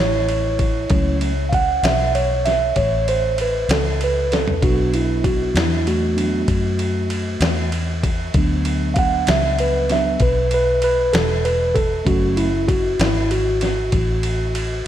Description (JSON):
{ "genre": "slow blues", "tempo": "64 BPM (dotted quarters)", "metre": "12/8", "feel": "straight", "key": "F# minor", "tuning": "A4 = 441 Hz", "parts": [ { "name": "mellow tine electric piano", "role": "accompaniment", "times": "0.0-14.9 s", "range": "F#3 to F#5", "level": "-20 LUFS", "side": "right 2 dB", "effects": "none" }, { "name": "vintage muted fingered electric bass", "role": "bass", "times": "0.0-14.8 s", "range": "E1 to F#2", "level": "-22 LUFS", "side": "left 1 dB", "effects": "none" }, { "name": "dusty soul sampler-style drum kit", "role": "drums", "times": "0.3-14.7 s", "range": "kick drum, ride cymbal, snare drum, toms", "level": "-22 LUFS", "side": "left 1 dB", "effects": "overdrive" } ], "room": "moderate lush hall reverb, RT60 2.9 s", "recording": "big arena sound", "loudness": "-16 LUFS", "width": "side -11 dB against mid", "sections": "0.0-14.9 A section", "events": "tine electric piano solo 0.0-14.9; drum fill 4.3-4.6", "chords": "0.0 F#m; 4.6 Bm; 12.1 F#m" }